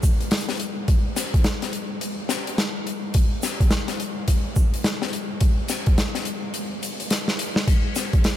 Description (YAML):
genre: glitch hop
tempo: 106 BPM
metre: 4/4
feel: swing 62% on 16ths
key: none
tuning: none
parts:
  - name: electronic kick drum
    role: drums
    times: 0.0-8.2 s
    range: none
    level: -19 LUFS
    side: equal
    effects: overdrive
  - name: huge arena drum kit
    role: drums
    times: 0.0-8.4 s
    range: crash cymbal, hi-hat, shaker, snare drum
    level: -24 LUFS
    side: left 2 dB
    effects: none
room: little or no reverb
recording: none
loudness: -21 LUFS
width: side -12 dB against mid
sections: 0.0-8.4 A section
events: drum fill 7.1-7.7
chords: none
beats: 0.32 | 0.88 1.45 2.02 2.58 | 3.15 3.71 4.28 4.85 | 5.41 5.98 6.54 7.11 | 7.68 8.24